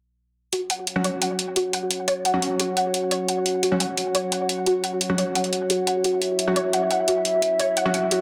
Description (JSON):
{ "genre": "dark technical drum and bass", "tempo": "174 BPM", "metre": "4/4", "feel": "straight", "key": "unclear", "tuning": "A4 = 439 Hz", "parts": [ { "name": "dark analog pad", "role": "sustained chords", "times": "0.5-8.2 s", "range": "F#4 to F#5", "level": "-27 LUFS", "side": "equal", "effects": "lush chorus" }, { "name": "soft round pluck", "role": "arpeggios", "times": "0.5-8.2 s", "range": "F#4 to F#5", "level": "-29 LUFS", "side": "equal", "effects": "ensemble chorus, tape echo" }, { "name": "electronic hi-hat", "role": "drums", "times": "0.5-8.2 s", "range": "none", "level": "-28 LUFS", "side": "equal", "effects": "none" }, { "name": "orchestra-hit-like synth stab", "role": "stabs", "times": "1.0-8.0 s", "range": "F#3 to F#4", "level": "-30 LUFS", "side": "equal", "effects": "built-in reverb, tape echo" } ], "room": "moderate plate reverb, RT60 2.3 s", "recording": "dense, heavily limited modern master", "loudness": "-23 LUFS", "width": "mono", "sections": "0.5-8.2 A section", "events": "filter sweep on synth pluck 0.5-8.2", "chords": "0.5 F#5" }